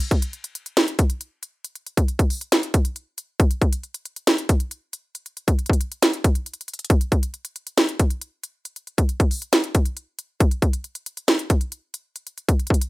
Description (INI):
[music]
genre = hip hop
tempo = 137 BPM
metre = 4/4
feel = half-time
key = none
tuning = none
[part]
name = trap drum kit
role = drums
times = 0.0-12.9 s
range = hi-hat, kick drum, snare drum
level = -19 LUFS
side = equal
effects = none
[sound]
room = moderate studio reverb, RT60 0.5 s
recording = rough home demo mix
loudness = -20 LUFS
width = side -20 dB against mid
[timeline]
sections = 0.0-12.9 A section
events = none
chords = none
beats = 0.33 0.77 1.21 | 1.64 2.08 2.52 2.96 | 3.40 3.83 4.27 4.71 | 5.15 5.59 6.02 6.46 | 6.90 7.34 7.78 8.21 | 8.65 9.09 9.53 9.97 | 10.40 10.84 11.28 11.72 | 12.15 12.59